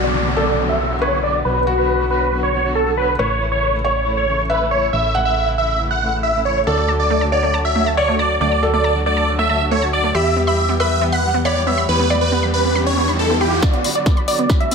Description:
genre	uplifting trance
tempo	138 BPM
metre	4/4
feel	straight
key	B minor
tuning	A4 = 442 Hz
part	big supersaw lead	melody	0.0-14.7 s	G4 to F#5	-18 LUFS	right 1 dB	phaser, sidechain pumping, low-pass filter, ping-pong delay
part	felt-muted upright piano	second line	0.0-13.5 s	F#4 to F#5	-24 LUFS	equal	digital delay
part	warm chamber string section	sustained chords	0.0-14.7 s	C#3 to G4	-25 LUFS	left 1 dB	vintage 12-bit sampler grit, sidechain pumping
part	solid FM bass	bass	0.0-13.6 s	A1 to E2	-22 LUFS	equal	sidechain pumping
part	downlifter and riser	sound effects	0.0-3.2, 11.5-14.7 s	none	-25 LUFS	left 1 dB	none
part	wide unison pluck	arpeggios	6.8-14.7 s	A3 to B5	-24 LUFS	right 2 dB	sidechain pumping, ping-pong delay
part	wide unison pluck	second line	13.6-14.7 s	D5 to E5	-25 LUFS	right 1 dB	sidechain pumping
part	electronic kick drum	drums	13.6-14.6 s	none	-16 LUFS	equal	none
part	punchy analog drum machine	drums	13.6-14.7 s	hi-hat, snare drum	-24 LUFS	left 2 dB	low-pass filter on hats, low-pass filter on perc, low-pass filter on snare
room	moderate digital room reverb, RT60 1.0 s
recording	none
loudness	-15 LUFS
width	side -5 dB against mid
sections	0.0-13.6 A section; 13.6-14.7 B section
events	filter sweep on supersaw synth 0.0-13.6, 13.6-14.7; riser 11.5-13.6, 13.6-14.7; build-up 13.6-14.7; drum fill 13.6-14.7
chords	0.0 Bm; 3.2 A; 6.7 D; 10.1 Em; 13.6 Bm

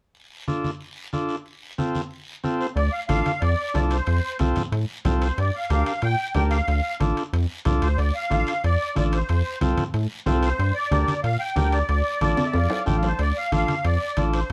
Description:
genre	latin, cumbia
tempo	184 BPM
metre	4/4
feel	straight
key	D minor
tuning	A4 = 436 Hz
part	guiro	percussion	0.1-14.5 s	none	-43 LUFS	equal	none
part	combo organ	accompaniment	0.5-14.4 s	C4 to A5	-29 LUFS	equal	none
part	congas	percussion	0.5-14.3 s	none	-31 LUFS	equal	none
part	musette accordion	melody	2.6-14.5 s	C5 to G5	-28 LUFS	equal	none
part	rubbery square bass	bass	2.8-14.5 s	A1 to Bb2	-24 LUFS	equal	none
part	timbales	percussion	2.8-14.5 s	none	-35 LUFS	equal	none
room	light reverb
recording	dark, warm production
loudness	-24 LUFS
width	mono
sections	0.2-2.8 A section; 2.8-13.2 B section; 13.2-14.5 B section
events	transistor combo organ fill 12.2-13.2; drum fill 12.4-13.2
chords	0.2 Dm; 1.5 F; 2.8 Dm; 4.1 F; 5.4 Gm; 6.7 Dm; 9.3 F; 10.6 Gm; 11.9 Dm

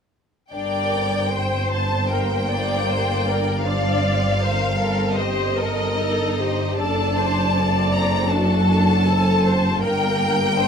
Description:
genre	classical, slow romantic movement for string orchestra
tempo	78 BPM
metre	4/4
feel	rubato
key	G minor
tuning	A4 = 440 Hz
part	rich studio violin section	melody	0.5-10.7 s	Eb5 to Bb5	-24 LUFS	left 2 dB	none
part	rich studio violin section	second line	0.5-10.7 s	Bb3 to D5	-26 LUFS	left 1 dB	none
part	clear studio viola section	accompaniment	0.5-10.7 s	F#4 to D5	-25 LUFS	left 1 dB	none
part	clear studio cello section	bass	0.5-10.7 s	F#2 to G2	-24 LUFS	right 1 dB	none
part	clear studio double bass section	bass	0.5-10.7 s	F#1 to G1	-24 LUFS	right 1 dB	none
room	moderate large studio reverb, RT60 1.3 s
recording	close, detailed microphones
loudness	-18 LUFS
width	side -6 dB against mid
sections	0.5-10.7 A section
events	none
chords	0.5 Gm; 3.7 Cm/G; 6.8 D7/F#; 9.8 Gm

